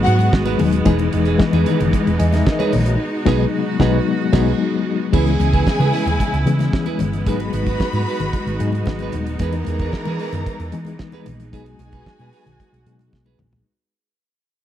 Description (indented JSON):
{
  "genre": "disco",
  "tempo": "112 BPM",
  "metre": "4/4",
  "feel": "straight",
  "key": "unclear",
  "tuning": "A4 = 441 Hz",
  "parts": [
    { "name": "warm studio string section", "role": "second line", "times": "0.0-0.3, 5.1-13.3 s", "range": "F#4 to B5", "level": "-26 LUFS", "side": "right 1 dB", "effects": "none" },
    { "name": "reed electric piano", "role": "accompaniment", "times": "0.0-13.7 s", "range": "E3 to G#5", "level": "-21 LUFS", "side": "left 6 dB", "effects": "fast tremolo" },
    { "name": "clear studio string section", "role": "sustained chords", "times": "0.0-13.6 s", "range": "C#3 to F#4", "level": "-25 LUFS", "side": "right 2 dB", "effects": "none" },
    { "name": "hollow-body short-scale fingered electric bass", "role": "bass", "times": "0.0-13.6 s", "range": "D#1 to E3", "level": "-20 LUFS", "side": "right 1 dB", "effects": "none" },
    { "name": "damped 70s drum kit", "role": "drums", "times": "0.1-13.6 s", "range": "crash cymbal, hi-hat, kick drum, snare drum, toms", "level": "-20 LUFS", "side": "right 1 dB", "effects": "none" },
    { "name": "clean electric guitar", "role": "accompaniment", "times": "0.2-13.6 s", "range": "D#4 to B4", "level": "-28 LUFS", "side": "right 10 dB", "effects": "spring reverb" },
    { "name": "congas", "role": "percussion", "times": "0.2-13.5 s", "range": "none", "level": "-27 LUFS", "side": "left 6 dB", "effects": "none" }
  ],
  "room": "little or no reverb",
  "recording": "dry, close 1970s-style studio recording",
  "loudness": "-16 LUFS",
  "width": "side -11 dB against mid",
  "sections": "0.0-5.1 A section; 5.1-13.7 B section",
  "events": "band accent 3.0-5.1; fade-out 5.1-13.7; reed electric piano fill 8.3-9.4; drum fill 13.1-13.7",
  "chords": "0.0 G#m7; 0.9 Emaj7; 3.0 B6; 5.1 C#m7; 7.3 G#m7; 9.4 Emaj7; 11.5 B6"
}